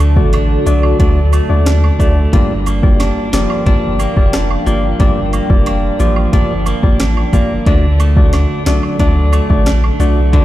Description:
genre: dancehall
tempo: 90 BPM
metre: 4/4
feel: straight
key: G minor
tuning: A4 = 436 Hz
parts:
  - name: deep dark ambient pad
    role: sustained chords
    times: 0.0-10.4 s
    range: F4 to A5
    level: -23 LUFS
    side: equal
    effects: chorus, built-in reverb, sidechain pumping
  - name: electric guitar at the edge of break-up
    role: arpeggios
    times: 0.0-10.4 s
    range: G2 to D4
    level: -19 LUFS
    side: right 3 dB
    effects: ping-pong delay
  - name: punchy sub bass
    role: bass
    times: 0.0-10.4 s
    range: F1 to Eb2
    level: -14 LUFS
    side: equal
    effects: none
  - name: afro-pop drum kit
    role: drums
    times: 0.0-10.4 s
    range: hi-hat, kick drum, rim click, snare drum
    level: -13 LUFS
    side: equal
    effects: none
  - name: cabasa and woodblock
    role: percussion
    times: 0.0-10.2 s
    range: none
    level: -27 LUFS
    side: right 6 dB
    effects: none
  - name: percussive organ stab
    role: accompaniment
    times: 0.2-10.4 s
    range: A3 to D5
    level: -20 LUFS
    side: left 4 dB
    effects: chorus
room: digital ambience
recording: played on a big sound system in a bare room, stone room reverb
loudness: -10 LUFS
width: side -14 dB against mid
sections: 0.0-10.4 A section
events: none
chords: 0.0 D; 2.3 Gm7; 7.7 D

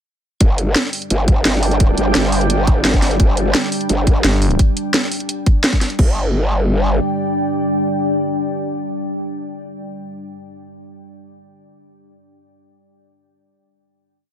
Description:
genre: dark technical drum and bass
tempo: 172 BPM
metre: 4/4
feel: straight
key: unclear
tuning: A4 = 440 Hz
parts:
  - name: deep dark ambient pad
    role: sustained chords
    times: 0.9-9.5 s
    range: G3 to G5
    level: -21 LUFS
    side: equal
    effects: chorus, built-in reverb, sidechain pumping
  - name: growl bass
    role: bass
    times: 0.4-7.0 s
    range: G1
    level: -17 LUFS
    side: equal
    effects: chorus, overdrive
  - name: drum and bass drum kit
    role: drums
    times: 0.4-6.1 s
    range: crash cymbal, kick drum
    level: -14 LUFS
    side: equal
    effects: none
  - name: drum and bass drum kit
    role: drums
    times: 0.4-6.0 s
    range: hi-hat, snare drum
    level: -17 LUFS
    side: equal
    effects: none
  - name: growling FM bass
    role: bass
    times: 4.2-4.6 s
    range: G1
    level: -15 LUFS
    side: equal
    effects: none
room: digital ambience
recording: none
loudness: -14 LUFS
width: side -9 dB against mid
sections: 0.4-6.0 drop; 6.0-8.8 final chord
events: drop 0.4-6.0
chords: 0.4 G5

